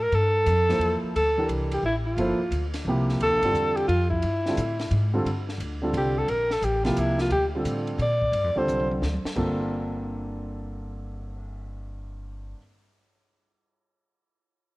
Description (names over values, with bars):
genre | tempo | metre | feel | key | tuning
modal jazz | 175 BPM | 3/4 | swing 65% on 8ths | G dorian | A4 = 442 Hz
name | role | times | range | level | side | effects
warm alto saxophone | melody | 0.0-8.9 s | E4 to D5 | -24 LUFS | equal | none
upright bass | bass | 0.0-12.5 s | G1 to Bb2 | -28 LUFS | equal | none
compact cocktail drum kit | drums | 0.1-11.4 s | crash cymbal, cymbal swell, hi-hat, kick drum, ride cymbal, snare drum, toms | -37 LUFS | equal | cassette tape
warm grand piano | accompaniment | 0.7-12.6 s | G2 to C5 | -29 LUFS | right 1 dB | none
room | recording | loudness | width
light reverb, small room ambience | home recording on cassette | -22 LUFS | side -20 dB against mid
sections
0.0-5.3 A section; 5.3-9.4 B section; 9.4-11.4 C section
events
alto saxophone solo 5.3-9.4; drum fill 8.7-9.4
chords
0.0 Gm11